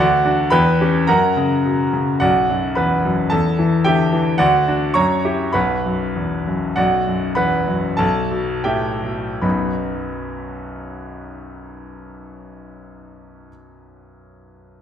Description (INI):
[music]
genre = classical, virtuoso piano study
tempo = 74-112 BPM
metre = 2/4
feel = rubato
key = unclear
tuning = A4 = 440 Hz
[part]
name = bright grand piano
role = solo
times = 0.0-14.8 s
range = B1 to C#6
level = -16 LUFS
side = equal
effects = none
[sound]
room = wet recital hall reverb, RT60 1.4 s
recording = none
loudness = -16 LUFS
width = side -9 dB against mid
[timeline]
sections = 0.0-6.8 A section; 6.8-9.4 B section; 9.4-12.6 C section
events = slowing down 6.2-9.4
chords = 0.0 D; 0.5 C#m7b5/E; 1.1 F#; 2.2 Bm; 3.3 Emadd11; 4.4 D; 5.0 F#7b9; 5.5 B5; 6.8 Bm; 8.0 Em/B; 9.4 B